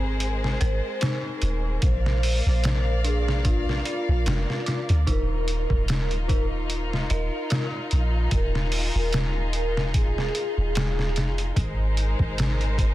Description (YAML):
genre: trip hop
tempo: 74 BPM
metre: 4/4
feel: swing 55% on 16ths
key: unclear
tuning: A4 = 440 Hz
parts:
  - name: dark chamber violin section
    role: sustained chords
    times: 0.0-12.9 s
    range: Ab3 to F5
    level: -32 LUFS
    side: left 2 dB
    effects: none
  - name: dark detuned synth bell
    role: arpeggios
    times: 0.0-8.3 s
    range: C4 to D6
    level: -35 LUFS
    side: right 1 dB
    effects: chorus, dub echo
  - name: soft 808-style bass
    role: bass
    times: 0.0-12.9 s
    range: Eb1 to D2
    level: -24 LUFS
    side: equal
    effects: none
  - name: trip hop sampler-style drum kit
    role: drums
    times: 0.2-12.9 s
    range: hi-hat, kick drum, snare drum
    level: -26 LUFS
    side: equal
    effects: studio reverb
  - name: pure breathy sine lead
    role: melody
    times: 0.6-11.4 s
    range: F4 to C5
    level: -32 LUFS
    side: equal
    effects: analog chorus, dub echo
room: little or no reverb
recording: dense, heavily limited modern master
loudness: -22 LUFS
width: side -15 dB against mid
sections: 0.0-12.9 A section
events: none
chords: 0.0 Abadd9; 1.8 Bb; 5.1 Ebsus2; 11.6 Abadd9